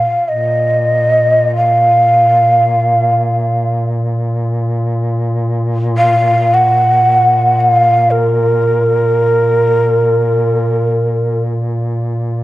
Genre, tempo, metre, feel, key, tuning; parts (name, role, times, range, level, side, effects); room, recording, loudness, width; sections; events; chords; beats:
caucasian folk, Caucasian lament; free time; A4 = 439 Hz
breathy mellow shakuhachi; melody; 0.0-11.5 s; Bb4 to Gb5; -11 LUFS; equal
mellow duduk; drone; 0.0-12.4 s; Bb2; -16 LUFS; equal
moderate recital hall reverb, RT60 1.7 s; dark, warm production; -10 LUFS; side -16 dB against mid
0.0-12.4 A section
free time